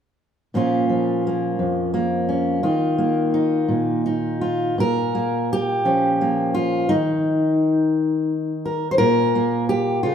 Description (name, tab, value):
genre	folk, solo fingerstyle acoustic guitar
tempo	57 BPM (dotted quarters)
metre	6/8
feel	rubato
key	Bb dorian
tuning	A4 = 444 Hz
part	fingerpicked steel-string acoustic guitar	solo	0.5-10.1 s	F2 to C5	-18 LUFS	equal	none
room	wet large studio reverb, RT60 1.4 s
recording	band playing live in one room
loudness	-18 LUFS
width	side -8 dB against mid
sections	0.5-4.8 A section; 4.8-10.1 B section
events	none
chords	0.5 Bbm; 2.6 Ebsus2; 4.8 Bbm; 6.9 Eb5; 9.0 N.C.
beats	| 0.54 1.59 | 2.64 3.70 | 4.78 5.86 | 6.91 7.96 | 8.99 10.04